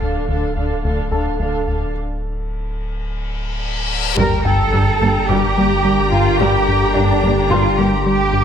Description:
cinematic, hybrid orchestral and electronic film score; 108 BPM; 4/4; straight; G minor; A4 = 440 Hz
dark chamber violin section; second line; 0.0-8.4 s; A4 to G5; -26 LUFS; left 4 dB
warm symphonic viola section; accompaniment; 0.0-7.9 s; D3 to D4; -26 LUFS; right 1 dB
rubbery square bass; riff; 0.0-8.4 s; D2 to G3; -20 LUFS; left 2 dB
punchy sub bass; bass; 0.0-8.4 s; D1 to G1; -24 LUFS; equal
warm symphonic cello section; bass; 0.0-8.4 s; D2 to Bb4; -20 LUFS; right 3 dB
clear grand piano; texture; 1.1-8.4 s; A4 to C6; -28 LUFS; left 1 dB; ping-pong delay
reverse cymbal and sub drop; sound effects; 3.0-6.4 s; -25 LUFS; left 2 dB
warm symphonic violin section; melody; 4.2-8.4 s; Bb5; -26 LUFS; left 2 dB
mellow French horn section; sustained chords; 4.2-8.4 s; Bb3 to G4; -24 LUFS; left 5 dB
warm trombone section; sustained chords; 4.2-8.4 s; D3 to G3; -25 LUFS; right 4 dB
warm symphonic double bass section; bass; 4.2-7.9 s; G2; -24 LUFS; right 4 dB
moderate scoring stage reverb, RT60 2.1 s; -14 LUFS; side -8 dB against mid
0.0-4.2 A section; 4.2-8.4 B section
break 1.9-4.2; reverse cymbal 3.0-4.2; impact 4.2-6.4
0.0 Dm; 4.2 Gm

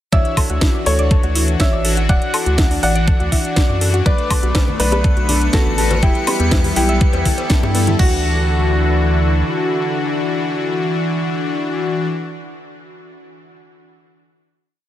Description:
progressive house; 122 BPM; 4/4; straight; D major; A4 = 440 Hz
clear grand piano; melody; 0.1-12.1 s; D4 to F#5; -24 LUFS; equal; sidechain pumping, dub echo
soft synth bell; second line; 0.1-12.1 s; F#5 to F#6; -30 LUFS; left 1 dB; chorus, sidechain pumping, dub echo
soft round pluck; arpeggios; 0.1-8.2 s; B3 to E6; -28 LUFS; right 1 dB; chorus, cassette tape, sidechain pumping, dub echo
soft supersaw; stabs; 0.1-12.1 s; E3 to B4; -22 LUFS; left 3 dB; sidechain pumping, dub echo
round analog bass; bass; 0.1-9.4 s; D1 to G2; -18 LUFS; equal; sidechain pumping
electronic kick drum; drums; 0.1-8.1 s; -16 LUFS; equal; overdrive
house drum kit; drums; 0.1-8.1 s; crash cymbal, hi-hat, snare drum, woodblock; -23 LUFS; equal; overdrive
warm analog pad; sustained chords; 4.1-12.1 s; D3 to A4; -26 LUFS; right 2 dB; chorus, sidechain pumping
drifting glass-harmonics texture; texture; 4.9-8.0 s; C#7; -31 LUFS; left 2 dB; chorus, built-in reverb, sidechain pumping
bongos, cowbell and congas; percussion; 4.4-8.0 s; -27 LUFS; left 4 dB; sidechain pumping on perc
little or no reverb; -14 LUFS; side -12 dB against mid
0.1-8.0 drop; 8.0-11.9 final chord
drop 0.1-8.0
0.1 Dadd9; 4.1 Bm7; 6.0 Em; 8.0 Dadd9

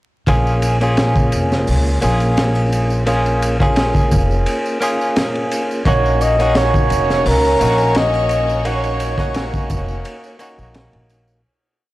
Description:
trip hop; 86 BPM; 4/4; swing 54% on 16ths; Bb minor; A4 = 440 Hz
direct-recorded clean electric guitar; accompaniment; 0.3-11.4 s; Bb3 to Ab4; -20 LUFS; equal; harmonic tremolo, tape echo
upright bass; bass; 0.3-11.4 s; F1 to Db2; -18 LUFS; equal
crunchy breakbeat drum kit; drums; 0.3-11.3 s; hi-hat, kick drum, ride cymbal, snare drum; -20 LUFS; equal
tambourine and triangle; percussion; 0.3-11.4 s; -37 LUFS; right 4 dB
trumpet with bucket mute; melody; 5.9-10.0 s; Bb4 to Eb5; -18 LUFS; right 1 dB; vintage 12-bit sampler grit, tape echo
rich studio violin section; sustained chords; 5.9-11.5 s; Db4 to Db5; -25 LUFS; equal
studio ambience; dry, gritty hardware recording, transformer saturation, vinyl crackle; -14 LUFS; side -17 dB against mid
0.3-11.4 groove
fade-out 7.7-11.4
0.3 Bbm7; 5.9 Gb6

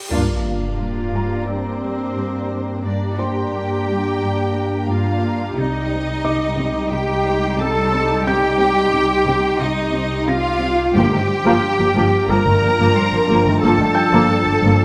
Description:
cinematic, suspense film score; 89 BPM; 4/4; straight; G minor; A4 = 441 Hz
muted studio violin section; melody; 0.0-14.8 s; C5 to Bb5; -31 LUFS; equal
mellow clarinet; second line; 0.0-14.8 s; C4 to Bb4; -26 LUFS; equal
muted symphonic violin section; second line; 0.0-14.8 s; C5 to Bb5; -30 LUFS; equal
muted symphonic cello section; bass; 0.0-14.8 s; C4 to Bb4; -26 LUFS; equal
cymbal swell and sub drop; sound effects; 0.0-2.9 s; -28 LUFS; equal
felt-muted upright piano; texture; 0.0-14.8 s; C5 to C7; -32 LUFS; equal
muted studio viola section; accompaniment; 0.1-14.8 s; Eb3 to Eb4; -26 LUFS; equal
glassy FM pad; sustained chords; 0.6-14.8 s; F4 to D6; -32 LUFS; equal; ensemble chorus, built-in reverb
mellow French horn section; sustained chords; 0.1-14.8 s; F3 to Eb4; -29 LUFS; equal
muted symphonic cello section; riff; 0.1-14.8 s; G2 to C4; -28 LUFS; equal
muted symphonic double bass section; bass; 0.1-14.7 s; G1 to G2; -27 LUFS; equal
timpani; percussion; 11.0-11.9 s; G2; -30 LUFS; equal
light reverb; close, detailed microphones; -18 LUFS; mono
0.1-14.8 A section
band accent 0.1-0.8; impact 0.1-2.9
0.1 Gm7; 5.6 Cmadd9; 10.9 Gm7

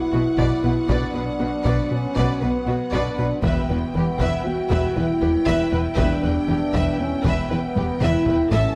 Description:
cinematic, hybrid orchestral and electronic film score; 118 BPM; 5/4; straight; A4 = 440 Hz
warm symphonic violin section; melody; 0.0-8.8 s; F#5 to A5; -38 LUFS; equal
dark French horn section; sustained chords; 0.0-8.8 s; B3 to F#4; -26 LUFS; equal
metallic inharmonic drone; sustained chords; 0.0-8.8 s; E3 to E5; -35 LUFS; equal; chorus, built-in reverb
plucky analog bass; riff; 0.0-8.7 s; E2 to B3; -29 LUFS; equal
impact; sound effects; 0.1-0.9 s; barely audible
warm symphonic violin section; second line; 0.1-8.8 s; F#4 to E5; -32 LUFS; equal
warm symphonic viola section; accompaniment; 0.1-8.8 s; A4 to B4; -36 LUFS; equal
rich symphonic cello section; bass; 0.1-8.6 s; E2 to B2; -30 LUFS; equal
warm studio double bass section; bass; 0.1-8.6 s; E1 to B1; -31 LUFS; equal
taiko ensemble; drums; 0.4-8.8 s; -31 LUFS; equal
moderate scoring stage reverb, RT60 1.6 s; close, detailed microphones; -21 LUFS; mono
0.0-8.8 A section
impact 0.0-0.9; drum fill 7.8-8.5
0.0 Bm; 3.4 Em

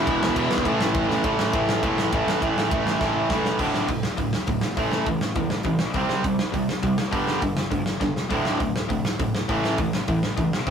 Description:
punk rock; 204 BPM; 4/4; straight; A4 = 438 Hz
biting overdriven guitar; melody; 0.0-0.5 s; E4 to E5; -32 LUFS; left 6 dB; tape echo
distorted electric guitar; riff; 0.0-10.7 s; D2 to C4; -24 LUFS; right 4 dB; overdrive
tight distorted guitar; riff; 0.0-10.7 s; D2 to C4; -28 LUFS; left 6 dB; distortion
fuzz picked electric bass; bass; 0.0-10.7 s; D1 to E2; -32 LUFS; equal; overdrive
big rock drum kit; drums; 0.1-10.7 s; crash cymbal, hi-hat, kick drum, ride cymbal, snare drum; -26 LUFS; equal
light reverb; rough rehearsal-room recording, warm saturation; -21 LUFS; side -7 dB against mid
0.0-1.2 A section; 1.2-3.6 B section; 3.6-10.7 C section
drum fill 1.1, 3.0-3.6, 8.0
0.0 E5; 0.7 A5; 3.6 D5; 4.8 A5; 6.0 C5; 7.1 G5; 8.3 D5; 9.5 A5

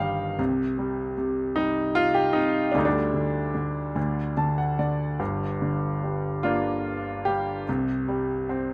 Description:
classical, lyrical solo piano; 50 BPM (dotted quarters); 6/8; rubato; G minor; A4 = 440 Hz
clear grand piano; solo; 0.0-8.7 s; G1 to A5; -26 LUFS; equal
light reverb; close, detailed microphones; -26 LUFS; mono
0.0-8.7 A section
grand piano fill 0.0-0.4, 4.0-5.2
0.4 C5; 2.8 Dsus4; 5.2 Gm; 7.7 C5

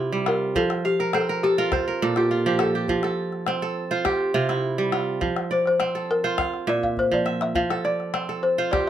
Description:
west african traditional, West African string and xylophone music; 103 BPM; 4/4; straight; F major; A4 = 439 Hz
balafon; melody; 0.0-8.9 s; F4 to F5; -24 LUFS; left 2 dB
kora; arpeggios; 0.0-8.9 s; Bb2 to F5; -23 LUFS; right 3 dB
calabash; percussion; 0.3-8.9 s; -30 LUFS; left 6 dB
light reverb; -21 LUFS; side -10 dB against mid
0.0-8.9 A section
balafon solo 0.0-8.9; kora fill 0.8-2.9; drum fill 6.8-7.6
0.0 C; 0.6 F5; 1.7 Bb5; 2.9 F; 4.1 C; 5.2 F; 6.4 Bb5; 7.6 F

